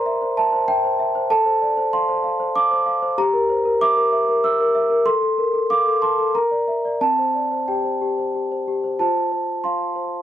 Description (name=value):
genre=classical, lullaby for celesta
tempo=95 BPM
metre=3/4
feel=rubato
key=F major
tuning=A4 = 441 Hz
part: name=large celesta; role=solo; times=0.0-10.2 s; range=C4 to E6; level=-18 LUFS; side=equal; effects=none
room=moderate studio ambience, RT60 0.5 s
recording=dark, warm production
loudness=-17 LUFS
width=side -11 dB against mid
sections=0.0-9.0 A section; 9.0-10.2 B section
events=none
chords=0.0 C7/Bb; 1.3 F/A; 3.2 Edim/G; 5.1 F/A; 6.3 Bb; 7.0 C5; 9.0 F